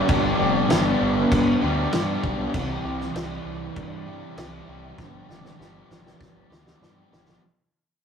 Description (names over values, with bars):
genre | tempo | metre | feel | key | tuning
rock, shoegaze and dream pop | 98 BPM | 4/4 | straight | G mixolydian | A4 = 441 Hz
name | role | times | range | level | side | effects
crunchy overdriven guitar | riff | 0.0-7.4 s | G2 to G4 | -23 LUFS | equal | none
growling picked electric bass | bass | 0.1-7.3 s | F1 to G2 | -30 LUFS | right 1 dB | overdrive
loose indie drum kit | drums | 0.1-7.4 s | crash cymbal, kick drum, snare drum | -27 LUFS | equal | none
room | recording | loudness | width
wet small room ambience, RT60 0.5 s | rough rehearsal-room recording | -20 LUFS | side -7 dB against mid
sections
0.0-7.4 A section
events
fade-out 0.0-7.4; drum fill 5.0-7.4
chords
0.0 G; 2.5 C; 5.0 G7